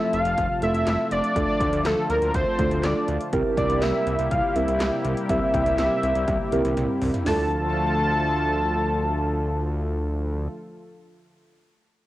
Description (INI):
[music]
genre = synth-pop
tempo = 122 BPM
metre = 4/4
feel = straight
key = D minor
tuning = A4 = 440 Hz
[part]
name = fat analog lead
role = melody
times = 0.0-10.5 s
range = A4 to A5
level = -25 LUFS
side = equal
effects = chorus, cassette tape, plate reverb
[part]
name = muted felt-like synth keys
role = accompaniment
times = 0.0-10.5 s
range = A3 to Bb4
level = -28 LUFS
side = right 2 dB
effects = chorus, cassette tape
[part]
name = warm analog pad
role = sustained chords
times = 0.0-10.5 s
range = C3 to A5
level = -29 LUFS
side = left 1 dB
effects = chorus, cassette tape
[part]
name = fat analog bass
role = bass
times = 0.1-10.5 s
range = F1 to D2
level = -27 LUFS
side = equal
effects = none
[part]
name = 80s electronic pad drums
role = drums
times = 0.1-7.4 s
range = handclaps, hi-hat, kick drum, snare drum, toms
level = -30 LUFS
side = equal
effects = gated reverb on snare and toms, cassette tape
[sound]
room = moderate studio ambience, RT60 0.5 s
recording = home recording on cassette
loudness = -21 LUFS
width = side -15 dB against mid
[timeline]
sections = 0.0-7.3 A section; 7.3-11.2 B section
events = drum fill 6.3-7.3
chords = 0.0 F; 1.4 Dm; 3.3 C7; 7.3 Dm